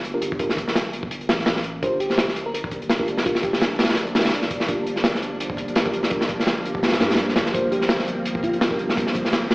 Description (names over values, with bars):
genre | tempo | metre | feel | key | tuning
drum and bass, jungle | 168 BPM | 4/4 | swing 54% on 16ths | G minor | A4 = 440 Hz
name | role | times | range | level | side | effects
soft dub sub bass | bass | 0.0-9.5 s | G1 to G2 | -35 LUFS | equal | none
crunchy breakbeat drum kit | drums | 0.0-9.5 s | hi-hat, kick drum, snare drum | -21 LUFS | equal | none
mellow tine electric piano | stabs | 0.1-9.1 s | D4 to Bb4 | -29 LUFS | right 1 dB | medium stereo tremolo, dub echo
bell-like FM electric piano | melody | 1.8-3.6, 7.5-9.5 s | F4 to C5 | -27 LUFS | equal | chorus, cassette tape, dub echo
soft string machine | sustained chords | 2.5-9.5 s | F3 to D4 | -28 LUFS | equal | ensemble chorus, vintage 12-bit sampler grit
room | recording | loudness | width
moderate digital room reverb, RT60 1.1 s, small room ambience | played on a big sound system in a bare room, stone room reverb, vinyl crackle, AM radio sound | -20 LUFS | side -26 dB against mid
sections
0.0-9.5 A section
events
kick drops out 1.1-1.8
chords
0.0 Gm7